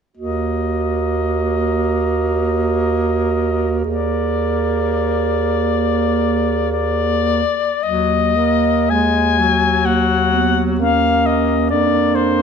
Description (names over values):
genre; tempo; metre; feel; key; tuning
classical, lyrical piece for single-reed quartet; 51-68 BPM; 4/4; rubato; Eb minor; A4 = 440 Hz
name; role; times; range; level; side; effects
bright soprano saxophone; melody; 0.2-12.4 s; C5 to Ab5; -19 LUFS; left 8 dB; none
dark clarinet; second line; 0.2-12.4 s; Bb3 to Ab4; -21 LUFS; right 7 dB; none
clear tenor saxophone; accompaniment; 0.2-12.4 s; Gb3 to Bb3; -21 LUFS; right 1 dB; none
clear bass clarinet; bass; 0.2-12.4 s; Eb2 to F2; -22 LUFS; right 1 dB; none
room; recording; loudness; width
moderate recital hall reverb, RT60 1.4 s; none; -15 LUFS; side -6 dB against mid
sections
0.2-7.8 A section; 7.8-12.4 B section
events
none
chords
0.2 Ebm; 11.7 Dm/F